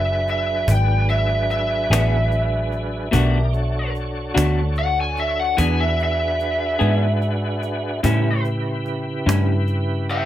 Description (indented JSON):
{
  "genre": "slow blues",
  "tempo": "49 BPM (dotted quarters)",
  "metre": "12/8",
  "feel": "straight",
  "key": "E mixolydian",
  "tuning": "A4 = 439 Hz",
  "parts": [
    { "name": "lead guitar through a small cranked amp", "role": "melody", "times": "0.0-10.3 s", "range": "E5 to G#5", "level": "-23 LUFS", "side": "equal", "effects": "overdrive" },
    { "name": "tonewheel organ", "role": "sustained chords", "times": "0.0-10.3 s", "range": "C#3 to D5", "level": "-27 LUFS", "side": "right 1 dB", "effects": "slow rotary speaker, chorus vibrato" },
    { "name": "vintage muted fingered electric bass", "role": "bass", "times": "0.0-10.3 s", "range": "F#1 to A2", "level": "-21 LUFS", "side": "equal", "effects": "none" },
    { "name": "cajon", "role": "drums", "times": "0.3-10.2 s", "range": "none", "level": "-27 LUFS", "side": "equal", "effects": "none" },
    { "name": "electric guitar through a small old amp", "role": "accompaniment", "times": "1.9-9.5 s", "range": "A2 to G#4", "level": "-22 LUFS", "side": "left 2 dB", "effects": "tremolo" }
  ],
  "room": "light reverb",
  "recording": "none",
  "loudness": "-18 LUFS",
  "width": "side -12 dB against mid",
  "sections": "0.0-10.3 A section",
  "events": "lead electric guitar solo 0.0-10.3; kick and snare drop out 6.8-8.0",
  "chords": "0.0 E7; 3.1 Bm7; 5.6 E7; 8.0 A7",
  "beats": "0.68 1.91 | 3.13 4.36 5.59 6.81 | 8.04 9.27"
}